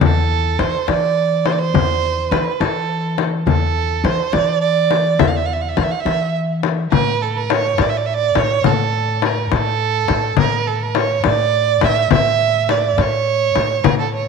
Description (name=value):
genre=Persian modal ensemble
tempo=69 BPM (dotted quarters)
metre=6/8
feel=straight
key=E dastgah shur, A dastgah chahargah from 6.9 s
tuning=A4 = 440 Hz
part: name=warm violin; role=melody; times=0.0-14.3 s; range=A4 to F5+48c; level=-18 LUFS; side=right 9 dB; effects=tape echo
part: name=upright bass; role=bass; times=0.0-14.3 s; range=E2 to E3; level=-20 LUFS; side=left 1 dB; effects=none
part: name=frame drum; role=percussion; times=0.0-14.0 s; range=none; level=-19 LUFS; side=left 13 dB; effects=none
room=moderate echo chamber reverb, RT60 2.5 s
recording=1960s-style stereo with parts hard left and right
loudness=-15 LUFS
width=side -5 dB against mid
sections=0.0-6.9 A section; 6.9-14.3 B section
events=none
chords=none